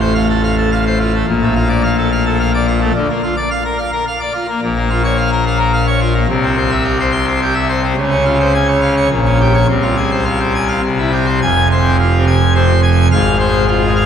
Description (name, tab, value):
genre	classical, organ toccata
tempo	107 BPM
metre	3/4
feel	straight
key	F minor from 4.6 s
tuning	A4 = 440 Hz
part	pipe organ, full organ	solo	0.0-14.1 s	F1 to C6	-12 LUFS	equal	none
room	wet cathedral reverb, RT60 5.3 s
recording	minimal, uncompressed stereo recording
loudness	-12 LUFS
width	side -8 dB against mid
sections	0.0-11.4 A section; 11.4-14.1 B section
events	none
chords	0.0 F/A; 1.3 Bbmaj7; 2.9 Bb/D; 4.6 Bbm; 6.3 C; 8.0 Dbmaj7; 9.1 Gdim/Bb; 9.7 Fm/C; 10.8 C; 11.4 Fm; 13.1 Fm/Ab